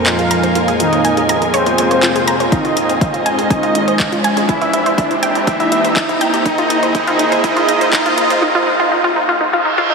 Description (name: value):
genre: melodic techno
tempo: 122 BPM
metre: 4/4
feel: straight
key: F minor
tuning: A4 = 440 Hz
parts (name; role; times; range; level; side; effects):
- deep dark ambient pad; sustained chords; 0.0-8.4 s; Ab3 to Eb5; -22 LUFS; equal; chorus, built-in reverb, sidechain pumping
- overtone-sweeping drone; drone; 0.0-8.4 s; F2; -29 LUFS; right 2 dB; chorus, built-in reverb, sidechain pumping
- riser and reverse cymbal; sound effects; 0.7-9.9 s; none; -22 LUFS; right 2 dB; none
- dark studio string section; texture; 0.0-8.4 s; Bb3 to Bb5; -22 LUFS; right 1 dB; sidechain pumping
- analog synth brass; melody; 0.1-8.4 s; C3 to F4; -20 LUFS; equal; chorus, sidechain pumping, tape echo
- soft supersaw; second line; 0.1-8.4 s; C5 to F5; -20 LUFS; equal; sidechain pumping, low-pass filter, diffuse ambient delay
- wide unison pluck; arpeggios; 0.1-9.9 s; Eb4 to Bb5; -18 LUFS; equal; auto-pan, sidechain pumping, diffuse ambient delay
- house drum kit; drums; 0.1-8.4 s; handclaps, hi-hat; -22 LUFS; equal; studio reverb
- electronic kick drum; drums; 2.5-8.0 s; none; -19 LUFS; equal; studio reverb
room: wet huge ambient reverb, RT60 6.9 s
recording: dreamy mix soaked in reverb, high-pass filter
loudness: -12 LUFS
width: side -4 dB against mid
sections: 0.0-9.9 A section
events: build-up 0.0-9.9; filter sweep on analog polysynth 0.0-9.9; filter sweep on supersaw synth 0.0-9.9; filter sweep on ambient pad 0.0-9.9; riser 0.7-8.4; reverse cymbal 9.5-9.9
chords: 0.0 Abadd9; 0.6 Bbm7; 2.5 Fm7; 4.5 C7; 6.5 Abadd9; 8.4 Ebsus2